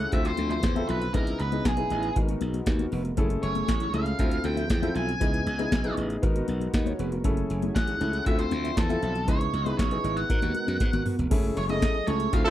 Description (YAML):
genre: early-eighties boogie funk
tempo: 118 BPM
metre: 4/4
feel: straight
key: F# dorian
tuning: A4 = 440 Hz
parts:
  - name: octave-fuzz lead guitar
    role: melody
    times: 0.0-12.4 s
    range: G#4 to G#5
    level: -31 LUFS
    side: right 1 dB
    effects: distortion, slapback echo
  - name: warm grand piano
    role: accompaniment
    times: 0.0-12.5 s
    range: B3 to D#5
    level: -32 LUFS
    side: left 3 dB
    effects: none
  - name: chorused pulse-width pad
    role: sustained chords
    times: 0.0-12.5 s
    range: C#3 to G#5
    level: -37 LUFS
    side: equal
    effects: none
  - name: mellow electric guitar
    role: riff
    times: 0.0-12.5 s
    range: A3 to E5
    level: -35 LUFS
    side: right 3 dB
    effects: wide subtle chorus
  - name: glassy slap bass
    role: bass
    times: 0.0-12.5 s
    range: E#1 to G#2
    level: -30 LUFS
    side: equal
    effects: none
  - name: booming analog drum machine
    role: drums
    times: 0.1-12.5 s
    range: crash cymbal, hi-hat, kick drum, snare drum, toms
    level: -26 LUFS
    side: equal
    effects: none
  - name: congas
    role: percussion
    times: 0.2-12.4 s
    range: none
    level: -36 LUFS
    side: left 12 dB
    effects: none
  - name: warm horn section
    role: second line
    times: 12.5 s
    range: F3 to A4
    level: -21 LUFS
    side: right 2 dB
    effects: none
room: little or no reverb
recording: dry, close 1970s-style studio recording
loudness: -24 LUFS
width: side -13 dB against mid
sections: 0.0-11.3 A section; 11.3-12.5 B section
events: drum fill 10.8-11.3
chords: 0.1 Dm9; 1.1 C#m9; 2.2 G#m9; 3.2 F#m9; 4.2 Dm9; 5.2 C#m9; 6.2 G#m9; 7.2 F#m9; 8.3 Dm9; 9.3 C#m9; 10.3 G#m9; 11.3 F#m9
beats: 0.12 0.63 | 1.14 1.65 2.16 2.67 | 3.17 3.68 4.19 4.70 | 5.21 5.72 6.23 6.74 | 7.24 7.75 8.26 8.77 | 9.28 9.79 10.29 10.80 | 11.31 11.82 12.33